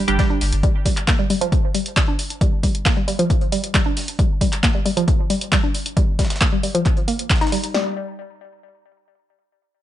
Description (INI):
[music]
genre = driving peak-time techno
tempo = 135 BPM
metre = 4/4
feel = straight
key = G minor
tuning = A4 = 440 Hz
[part]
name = woody wave-folded pluck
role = riff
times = 0.0-8.0 s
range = F3 to Eb4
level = -23 LUFS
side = equal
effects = chorus, sidechain pumping, tape echo
[part]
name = saturated sub bass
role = bass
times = 0.1-0.6 s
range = G1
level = -21 LUFS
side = equal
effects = overdrive, sidechain pumping, low-pass filter
[part]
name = punchy analog drum machine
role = drums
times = 0.1-7.7 s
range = handclaps, hi-hat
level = -24 LUFS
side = equal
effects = sidechain pumping on hats
[part]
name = dusty soul sampler-style drum kit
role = drums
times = 0.2-7.6 s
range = hi-hat, snare drum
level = -34 LUFS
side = right 1 dB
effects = none
[part]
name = punchy analog drum machine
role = drums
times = 0.2-7.8 s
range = kick drum, snare drum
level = -19 LUFS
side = equal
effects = none
[sound]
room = digital ambience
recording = nothing above 10.6 kHz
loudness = -17 LUFS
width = side -12 dB against mid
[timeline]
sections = 0.0-7.7 A section; 7.7-9.5 B section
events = filter sweep on synth arpeggio sound 0.0-7.7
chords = 0.0 G5; 7.7 N.C.